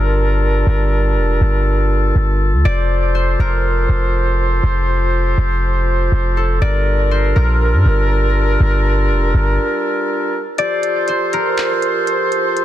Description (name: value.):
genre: hip hop, atmospheric cloud-rap.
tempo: 121 BPM.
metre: 4/4.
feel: half-time.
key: unclear.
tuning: A4 = 440 Hz.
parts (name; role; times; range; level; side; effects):
concert harp; melody; 0.0-12.6 s; A4 to D5; -21 LUFS; left 1 dB; tape echo.
warm woodwind section; sustained chords; 0.0-12.6 s; F3 to C5; -18 LUFS; equal; none.
clean 808-style bass; bass; 0.0-9.6 s; F1 to G2; -15 LUFS; equal; none.
trap drum kit; drums; 10.6-12.6 s; handclaps, hi-hat; -26 LUFS; right 1 dB; none.
room: small room ambience.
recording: dense, heavily limited modern master.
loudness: -14 LUFS.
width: side -12 dB against mid.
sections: 0.0-10.6 A section; 10.6-12.6 B section.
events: break 9.6-10.6; kick muted 10.6-12.6.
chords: 0.0 Gm7; 2.6 Fadd9; 6.6 Gm7; 10.6 Fadd9.